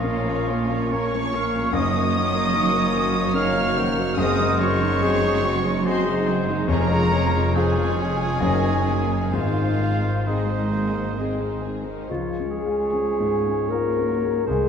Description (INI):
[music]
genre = classical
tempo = 64-78 BPM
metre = 3/4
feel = rubato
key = Db major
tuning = A4 = 439 Hz
[part]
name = clear grand piano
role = melody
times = 0.0-14.7 s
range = F1 to Bb4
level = -25 LUFS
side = left 3 dB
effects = none
[part]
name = warm symphonic violin section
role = melody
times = 0.0-14.3 s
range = Eb5 to F6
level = -32 LUFS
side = left 1 dB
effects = none
[part]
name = clear clarinet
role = second line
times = 0.0-14.7 s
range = F4 to F5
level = -34 LUFS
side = left 3 dB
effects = none
[part]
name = mellow hollow concert flute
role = second line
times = 0.0-14.7 s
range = Eb5 to F6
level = -32 LUFS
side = left 1 dB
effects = none
[part]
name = warm oboe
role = second line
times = 0.0-14.7 s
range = C5 to Db5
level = -33 LUFS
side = right 3 dB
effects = none
[part]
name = warm symphonic violin section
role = second line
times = 0.0-14.3 s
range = Bb3 to Db5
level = -36 LUFS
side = left 3 dB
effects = none
[part]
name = mellow bassoon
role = accompaniment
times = 0.0-14.7 s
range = Eb3 to Bb3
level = -31 LUFS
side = equal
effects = none
[part]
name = rich symphonic viola section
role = accompaniment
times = 0.0-14.3 s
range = Eb3 to F4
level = -30 LUFS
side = right 1 dB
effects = none
[part]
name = mellow French horn section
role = sustained chords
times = 0.0-14.7 s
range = Eb3 to Bb4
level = -27 LUFS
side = left 2 dB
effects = none
[part]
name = clear trumpet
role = stabs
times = 0.0-11.6 s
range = Eb4 to F5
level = -29 LUFS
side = right 4 dB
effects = none
[part]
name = clear symphonic double bass section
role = bass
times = 0.0-14.7 s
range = F1 to Db2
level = -30 LUFS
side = right 4 dB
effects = none
[part]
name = warm symphonic cello section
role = bass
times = 0.0-14.7 s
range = F2 to Bb3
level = -28 LUFS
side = right 3 dB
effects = none
[sound]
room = wet scoring stage reverb, RT60 1.9 s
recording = dark, warm production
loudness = -19 LUFS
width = side -7 dB against mid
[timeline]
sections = 0.0-12.1 A section; 12.1-14.7 B section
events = none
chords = 0.0 Bbm; 1.7 Ebm7/Gb; 4.2 Ab7/Gb; 6.7 Db/F; 8.4 Ebm7/Gb; 9.3 Ab; 12.1 Db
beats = 0.05 0.92 | 1.74 2.54 3.35 | 4.18 5.01 5.86 | 6.69 7.55 8.43 | 9.34 10.27 11.18 | 12.09 12.91 13.70 | 14.47